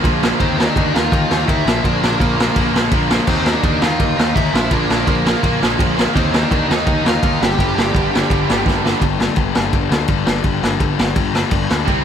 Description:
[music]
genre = punk rock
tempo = 167 BPM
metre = 4/4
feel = straight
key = unclear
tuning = A4 = 441 Hz
[part]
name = cranked stack guitar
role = riff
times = 0.0-12.0 s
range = G2 to Eb4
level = -21 LUFS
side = left 16 dB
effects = overdrive
[part]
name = tight distorted guitar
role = riff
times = 0.0-9.0, 11.9-12.0 s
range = G2 to Eb4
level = -22 LUFS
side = right 16 dB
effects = distortion
[part]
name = fuzz picked electric bass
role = bass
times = 0.0-12.0 s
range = G1 to Eb2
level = -22 LUFS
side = equal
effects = overdrive
[part]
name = raw garage drum kit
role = drums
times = 0.0-12.0 s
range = crash cymbal, kick drum, ride cymbal, snare drum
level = -17 LUFS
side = equal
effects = none
[part]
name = dark smooth lead guitar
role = melody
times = 0.4-8.6 s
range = Bb3 to G5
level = -23 LUFS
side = left 1 dB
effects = overdrive
[sound]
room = little or no reverb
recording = none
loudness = -14 LUFS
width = side -8 dB against mid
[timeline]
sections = 0.0-9.0 A section; 9.0-12.0 B section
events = drum fill 8.7-9.0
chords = 0.4 Eb5; 1.7 Bb; 3.3 Eb5; 4.5 Bb; 6.2 Eb5; 7.4 G5

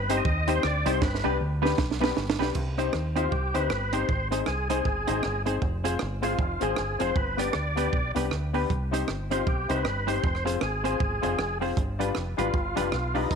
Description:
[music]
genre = ska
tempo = 156 BPM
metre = 4/4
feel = swing 59% on 8ths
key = C harmonic minor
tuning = A4 = 440 Hz
[part]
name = overdriven tonewheel organ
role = melody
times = 0.0-13.4 s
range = Eb4 to Eb5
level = -31 LUFS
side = right 1 dB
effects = chorus vibrato, stopped rotary speaker
[part]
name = deep dub fingered electric bass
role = bass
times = 0.0-13.4 s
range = F1 to Eb2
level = -30 LUFS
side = equal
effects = none
[part]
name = semi-hollow electric guitar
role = accompaniment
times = 0.1-13.2 s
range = G3 to C5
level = -33 LUFS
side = right 10 dB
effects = spring reverb
[part]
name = warm upright piano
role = stabs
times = 0.1-13.3 s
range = B3 to C5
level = -30 LUFS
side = left 12 dB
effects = none
[part]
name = compact cocktail drum kit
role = drums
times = 0.1-13.4 s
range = crash cymbal, hi-hat, kick drum, rim click, snare drum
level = -30 LUFS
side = right 3 dB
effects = none
[sound]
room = moderate echo chamber reverb, RT60 1.3 s, studio ambience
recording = 1960s-style stereo with parts hard left and right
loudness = -24 LUFS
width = side -6 dB against mid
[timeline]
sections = 0.0-2.6 A section; 2.6-13.4 B section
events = drum fill 1.0-2.6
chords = 0.0 Cm; 1.0 G; 2.6 Cm; 4.1 Ab; 5.6 Fm; 7.2 G; 8.7 Cm; 10.2 Fm; 11.8 G7

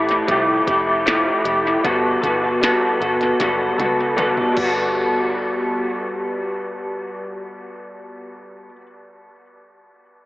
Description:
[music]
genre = indie pop, bedroom pop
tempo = 77 BPM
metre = 4/4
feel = straight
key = G lydian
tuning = A4 = 436 Hz
[part]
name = electric guitar through a small old amp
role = accompaniment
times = 0.0-8.9 s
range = F3 to A4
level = -18 LUFS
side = equal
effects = analog chorus, warbly pitch drift, dub echo
[part]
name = vintage muted fingered electric bass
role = bass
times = 0.0-8.7 s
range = F1 to C#2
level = -38 LUFS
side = equal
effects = none
[part]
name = minimal click drum kit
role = drums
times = 0.1-4.8 s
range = crash cymbal, hi-hat, kick drum, snare drum, toms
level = -27 LUFS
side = equal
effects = dub echo
[sound]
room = moderate spring reverb, RT60 2.6 s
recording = echo-heavy mix, AM radio sound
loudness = -17 LUFS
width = side -18 dB against mid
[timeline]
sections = 0.0-5.0 A section; 5.0-8.1 B section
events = drum fill 3.4-5.0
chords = 0.0 Fmaj9; 1.8 Gmaj9

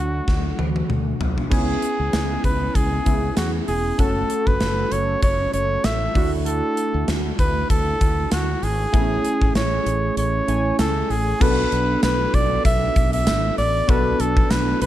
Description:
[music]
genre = 1980s-style pop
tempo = 97 BPM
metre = 4/4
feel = swing 55% on 16ths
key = B dorian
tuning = A4 = 439 Hz
[part]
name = clear flugelhorn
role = melody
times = 0.0-14.9 s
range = F#4 to E5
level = -24 LUFS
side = equal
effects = analog delay
[part]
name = warm analog keys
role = accompaniment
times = 0.0-14.9 s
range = F#3 to G#5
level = -25 LUFS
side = right 1 dB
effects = chorus
[part]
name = fretless electric bass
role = bass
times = 0.0-14.9 s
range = E1 to E2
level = -24 LUFS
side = equal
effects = lush chorus
[part]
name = gated 80s drum kit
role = drums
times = 0.3-14.9 s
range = crash cymbal, hi-hat, kick drum, snare drum, tambourine, toms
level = -22 LUFS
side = equal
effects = none
[sound]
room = light reverb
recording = dark, warm production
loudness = -18 LUFS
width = side -13 dB against mid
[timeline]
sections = 0.0-1.5 A section; 1.5-11.4 B section; 11.4-14.9 C section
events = drum fill 0.3-1.5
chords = 0.0 D; 1.5 C#m7; 4.0 F#m; 6.2 Dadd9; 8.9 Amaj7; 11.4 Bm7

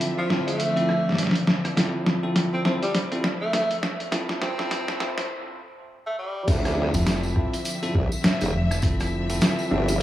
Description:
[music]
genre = glitch hop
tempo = 102 BPM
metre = 4/4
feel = swing 59% on 16ths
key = D minor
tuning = A4 = 441 Hz
[part]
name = warm studio string section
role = sustained chords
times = 0.0-10.0 s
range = D3 to E5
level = -29 LUFS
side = left 1 dB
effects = sidechain pumping
[part]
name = bell-like tine electric piano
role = stabs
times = 0.0-9.9 s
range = C4 to A4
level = -30 LUFS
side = equal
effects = vintage 12-bit sampler grit, sidechain pumping, analog delay
[part]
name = boom bap sampler-style drum kit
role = drums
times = 0.0-10.0 s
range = crash cymbal, hi-hat, rim click, snare drum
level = -26 LUFS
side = equal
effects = none
[part]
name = clear tenor saxophone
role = melody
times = 0.2-6.5 s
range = F3 to C4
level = -28 LUFS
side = equal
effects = vintage 12-bit sampler grit, analog delay
[part]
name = formant-sweep wobble bass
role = bass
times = 6.5-10.0 s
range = F1 to D2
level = -23 LUFS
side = equal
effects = chorus, overdrive
[part]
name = electronic kick drum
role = drums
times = 6.5-9.0 s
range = none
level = -24 LUFS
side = equal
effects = none
[part]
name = tambourine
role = percussion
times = 6.5-10.0 s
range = none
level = -37 LUFS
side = right 2 dB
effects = none
[part]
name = rubbery square bass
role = bass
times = 6.9-9.4 s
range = F1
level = -25 LUFS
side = equal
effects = none
[sound]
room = wet spring reverb, RT60 2.0 s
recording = echo-heavy mix, high-pass filter, small room ambience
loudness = -22 LUFS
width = side -13 dB against mid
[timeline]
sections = 0.0-6.5 A section; 6.5-10.0 B section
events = build-up 0.0-6.5; drum fill 0.0-5.3; filter sweep 0.0-6.5; break 5.3-6.5; drop 6.5-10.0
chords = 0.0 Dm9

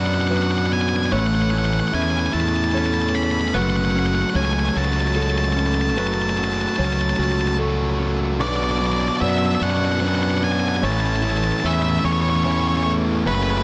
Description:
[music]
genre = rock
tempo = 49 BPM (dotted quarters)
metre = 6/8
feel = straight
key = A major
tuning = A4 = 437 Hz
[part]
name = octave-fuzz lead guitar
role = melody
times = 0.0-13.6 s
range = B4 to B5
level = -27 LUFS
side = equal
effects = distortion, digital delay
[part]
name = pedal steel guitar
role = sustained chords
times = 0.0-13.6 s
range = A4 to C#6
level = -41 LUFS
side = equal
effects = none
[part]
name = direct-recorded clean electric guitar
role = arpeggios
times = 0.0-13.6 s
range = A2 to A4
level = -32 LUFS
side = equal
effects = none
[part]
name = felt-muted upright piano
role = arpeggios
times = 0.0-13.6 s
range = A4 to C#6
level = -35 LUFS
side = equal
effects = digital delay
[part]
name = fuzz guitar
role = riff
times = 0.0-13.6 s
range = A2 to F#4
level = -26 LUFS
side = equal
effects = distortion
[part]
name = fuzz fingered electric bass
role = bass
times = 0.0-13.6 s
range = F#1 to F#2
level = -25 LUFS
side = equal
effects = overdrive
[part]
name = fuzz guitar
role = riff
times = 8.4-13.6 s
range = F#2 to F#4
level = -31 LUFS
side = equal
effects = distortion
[sound]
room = light reverb, digital ambience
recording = none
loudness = -21 LUFS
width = mono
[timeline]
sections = 0.0-13.6 A section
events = none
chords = 0.0 Bmadd9; 1.1 A; 3.5 F#m; 8.4 Bmadd9; 10.8 A

